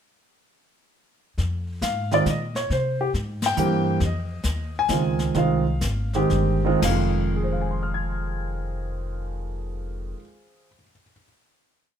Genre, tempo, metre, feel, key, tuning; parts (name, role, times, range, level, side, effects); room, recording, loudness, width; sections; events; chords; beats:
jazz piano trio; 115-137 BPM; 3/4; swing 66% on 8ths; F minor; A4 = 440 Hz
upright bass; bass; 1.4-10.1 s; F1 to C3; -27 LUFS; left 1 dB
jazz brush drum kit; drums; 1.4-7.4 s; brushed snare drum, crash cymbal, hi-hat, kick drum, ride cymbal, snare drum, toms; -32 LUFS; left 3 dB
warm concert grand piano; melody; 1.8-11.2 s; F2 to Ab6; -23 LUFS; right 2 dB
moderate studio reverb, RT60 0.8 s; -22 LUFS; side -8 dB against mid
1.4-6.8 A section; 6.8-10.0 final chord
band accent 3.3; slowing down 4.0-6.8
1.4 Fm7; 2.7 C7; 4.0 Fm7
| 1.38 1.81 2.25 | 2.69 3.13 3.57 | 4.01 4.45 4.89 | 5.35 5.82 6.31 | 6.82 7.34 7.86 | 8.39 8.91 9.43